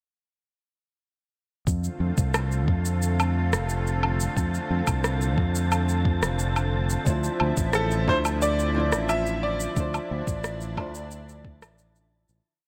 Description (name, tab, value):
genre	sunset chillout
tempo	89 BPM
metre	4/4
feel	straight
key	D minor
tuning	A4 = 442 Hz
part	lush unison pad	sustained chords	1.7-12.4 s	D3 to F4	-35 LUFS	equal	chorus
part	fingered electric bass	bass	1.7-12.4 s	F1 to F2	-28 LUFS	equal	none
part	electronic kick drum	drums	1.7-11.6 s	none	-28 LUFS	equal	none
part	electronic shaker, rim click and woodblock	drums	1.7-12.4 s	none	-31 LUFS	equal	none
part	wind-like tuned noise texture	texture	2.1-12.5 s	A5	-40 LUFS	equal	built-in reverb
part	nylon-string guitar	accompaniment	7.0-10.9 s	F3 to C5	-35 LUFS	equal	tape echo
part	bright concert grand piano	melody	7.8-11.7 s	A4 to E5	-30 LUFS	equal	tape echo
room	light reverb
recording	none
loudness	-25 LUFS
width	mono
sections	1.7-12.5 groove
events	fade-out 8.9-12.5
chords	1.7 F6; 7.1 Dm9